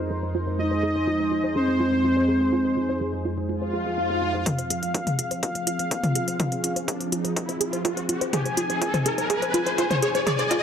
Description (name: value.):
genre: melodic techno.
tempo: 124 BPM.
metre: 4/4.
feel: straight.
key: F minor.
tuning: A4 = 441 Hz.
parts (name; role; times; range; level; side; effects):
warm analog pad; sustained chords; 0.0-10.6 s; F2 to C5; -30 LUFS; right 1 dB; chorus, sidechain pumping.
warbly dusty pluck; arpeggios; 0.0-10.6 s; F4 to C5; -29 LUFS; right 1 dB; chorus, sidechain pumping, digital delay.
expressive synth lead; melody; 0.6-10.6 s; C4 to Ab4; -26 LUFS; equal; chorus, sidechain pumping, digital delay.
soft supersaw; second line; 0.6-10.6 s; C5 to Ab5; -30 LUFS; left 1 dB; sidechain pumping, low-pass filter, digital delay.
swell and riser; sound effects; 3.6-10.6 s; none; -29 LUFS; left 1 dB; none.
electronic kick drum; drums; 4.5-10.6 s; none; -32 LUFS; equal; high-pass filter on kick.
techno drum kit; drums; 4.5-10.6 s; hi-hat, toms; -27 LUFS; left 1 dB; none.
room: moderate lush hall reverb, RT60 2.1 s.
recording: dark, warm production.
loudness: -22 LUFS.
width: side -8 dB against mid.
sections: 0.0-4.5 A section; 4.5-10.6 B section.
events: filter sweep on analog synth lead 0.0-4.5; filter sweep on supersaw synth 0.0-4.5, 4.5-10.6; swell 3.6-4.5; build-up 4.5-10.6; riser 4.5-10.6; filter sweep on synth arpeggio sound 4.5-10.6; filter sweep on analog synth pad 4.5-10.6; drum fill 8.3-10.6.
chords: 0.0 Abadd9/F; 4.5 Fm.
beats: 0.11 | 0.59 1.07 1.56 2.04 | 2.53 3.01 3.49 3.98 | 4.46 4.95 5.43 5.91 | 6.40 6.88 7.37 7.85 | 8.33 8.82 9.30 9.78 | 10.27.